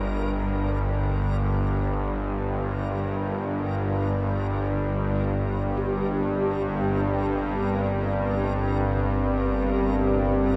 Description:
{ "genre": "dark ambient drone", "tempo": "free time", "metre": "none", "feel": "none", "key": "G minor", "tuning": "A4 = 440 Hz", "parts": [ { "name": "bowed-like drone", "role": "drone", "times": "0.0-10.6 s", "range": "G1 to G2", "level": "-26 LUFS", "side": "equal", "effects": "built-in reverb" }, { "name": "backwards swelling texture", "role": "texture", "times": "0.0-10.6 s", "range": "Bb4", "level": "-45 LUFS", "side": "equal", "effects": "built-in reverb" }, { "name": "dark analog pad", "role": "sustained chords", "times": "5.3-10.6 s", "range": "C4 to Bb4", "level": "-32 LUFS", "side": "equal", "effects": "subtle chorus" }, { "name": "gamelan-type bronze metallophone", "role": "arpeggios", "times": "5.8-10.6 s", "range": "G4", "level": "-36 LUFS", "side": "equal", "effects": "tape echo" } ], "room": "wet cathedral reverb, RT60 5.2 s", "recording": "none", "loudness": "-26 LUFS", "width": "mono", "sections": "0.0-5.4 A section; 5.4-10.6 B section", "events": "fade-in on synth texture 5.4-10.6", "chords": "0.0 Gm" }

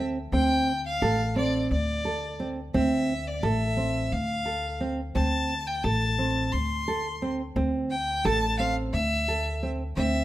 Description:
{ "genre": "contemporary instrumental, chamber music in an uneven meter", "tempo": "174 BPM (eighths)", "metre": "7/8", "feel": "straight", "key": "D minor", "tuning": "A4 = 443 Hz", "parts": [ { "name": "clear violin", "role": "melody", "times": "0.0-10.2 s", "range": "D5 to C6", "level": "-29 LUFS", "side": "left 2 dB", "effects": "none" }, { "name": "nylon-string guitar", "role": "arpeggios", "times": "0.0-10.2 s", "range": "C4 to A4", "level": "-28 LUFS", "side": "right 2 dB", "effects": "none" }, { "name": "upright bass", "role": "bass", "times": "0.0-10.2 s", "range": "A1 to D2", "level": "-29 LUFS", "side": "equal", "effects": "none" } ], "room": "light reverb", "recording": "close, detailed microphones", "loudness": "-24 LUFS", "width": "side -14 dB against mid", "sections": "0.0-10.2 A section", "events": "none", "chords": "0.0 D5" }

